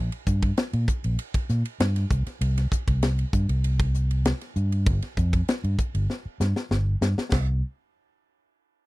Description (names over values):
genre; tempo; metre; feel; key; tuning
electric jazz fusion; 98 BPM; 4/4; straight; unclear; A4 = 440 Hz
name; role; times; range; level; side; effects
fingered electric bass; bass; 0.0-7.6 s; G1 to Bb2; -23 LUFS; equal; none
crisp fusion drum kit; drums; 0.1-7.5 s; china cymbal, hi-hat, kick drum, ride cymbal, snare drum; -26 LUFS; equal; none
room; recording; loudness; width
little or no reverb; dry, close 1970s-style studio recording; -22 LUFS; side -20 dB against mid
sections
0.0-7.3 A section; 7.3-8.9 B section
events
drum fill 6.1-7.3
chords
none